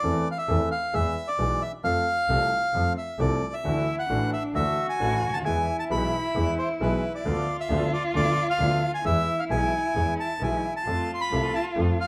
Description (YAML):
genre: tango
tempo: 133 BPM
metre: 4/4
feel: rubato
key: unclear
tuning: A4 = 440 Hz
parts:
  - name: bandoneon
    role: melody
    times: 0.0-12.1 s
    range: B4 to C6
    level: -29 LUFS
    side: equal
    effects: none
  - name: warm concert grand piano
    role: accompaniment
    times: 0.0-12.0 s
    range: A1 to A4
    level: -32 LUFS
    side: equal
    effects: none
  - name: clear double bass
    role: bass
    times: 0.0-12.0 s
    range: A1 to F2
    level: -32 LUFS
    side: equal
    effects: none
  - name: dark cello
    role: second line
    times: 3.6-12.1 s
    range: D4 to F#4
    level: -32 LUFS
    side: equal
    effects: none
room: moderate large studio reverb, RT60 0.9 s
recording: none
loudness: -26 LUFS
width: mono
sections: 0.0-12.1 A section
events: none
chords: 0.0 Am/E; 0.9 E; 1.8 F; 3.6 Dadd9; 5.5 E; 7.3 Bdim/D; 9.1 E; 10.9 F